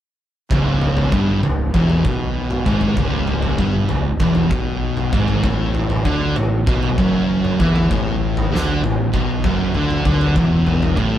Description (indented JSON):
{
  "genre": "stoner and doom metal",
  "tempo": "97 BPM",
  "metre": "4/4",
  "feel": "straight",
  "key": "C# phrygian",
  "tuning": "A4 = 441 Hz",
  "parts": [
    { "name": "thick fuzz guitar", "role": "riff", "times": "0.5-11.2 s", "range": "C#2 to E3", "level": "-21 LUFS", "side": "left 3 dB", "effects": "distortion" },
    { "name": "thick fuzz guitar", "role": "riff", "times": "0.5-11.2 s", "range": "C#2 to E3", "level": "-21 LUFS", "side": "right 4 dB", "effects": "distortion" },
    { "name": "fuzz fingered electric bass", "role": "bass", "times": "0.5-11.2 s", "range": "C#1 to E2", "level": "-23 LUFS", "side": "equal", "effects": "overdrive" },
    { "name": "oversized low-tuned drum kit", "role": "drums", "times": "0.5-11.1 s", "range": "kick drum, snare drum, toms", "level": "-21 LUFS", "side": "equal", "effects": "none" }
  ],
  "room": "light reverb",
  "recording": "band playing live in one room",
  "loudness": "-16 LUFS",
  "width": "side -11 dB against mid",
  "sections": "0.5-11.2 A section",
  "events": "none",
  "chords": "0.5 C#m; 5.4 A5; 10.4 E5"
}